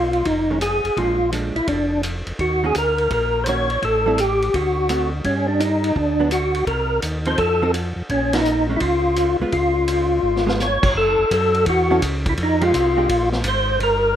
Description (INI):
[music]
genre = soul jazz organ trio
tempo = 168 BPM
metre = 4/4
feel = swing 66% on 8ths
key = unclear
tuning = A4 = 441 Hz
[part]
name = percussive tonewheel organ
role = melody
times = 0.0-14.2 s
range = Db4 to Db5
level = -19 LUFS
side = equal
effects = slow rotary speaker, overdrive, chorus vibrato
[part]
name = tonewheel organ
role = bass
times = 0.0-14.1 s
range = F1 to G2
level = -24 LUFS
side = equal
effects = slow rotary speaker
[part]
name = vintage drum kit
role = drums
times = 0.1-13.9 s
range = crash cymbal, hi-hat, kick drum, ride cymbal, snare drum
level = -27 LUFS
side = equal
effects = none
[part]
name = hollow-body jazz guitar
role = accompaniment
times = 0.5-13.1 s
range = D3 to A4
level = -26 LUFS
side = right 2 dB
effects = none
[sound]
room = moderate digital room reverb, RT60 0.9 s, studio ambience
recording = rough home demo mix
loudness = -17 LUFS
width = side -10 dB against mid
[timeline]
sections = 0.0-11.0 A section; 11.0-14.2 B section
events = band accent 8.3; drum fill 10.2-10.6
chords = 0.0 Bb7(no3) (rootless); 1.0 Bb7; 2.4 Ebm7; 3.8 Am7; 4.5 D7; 5.2 Gmaj7(no3); 6.7 Cm7; 7.4 F7; 8.1 Bbm7; 9.5 Db; 11.0 F#m7; 12.4 Fm9; 13.1 A#sus2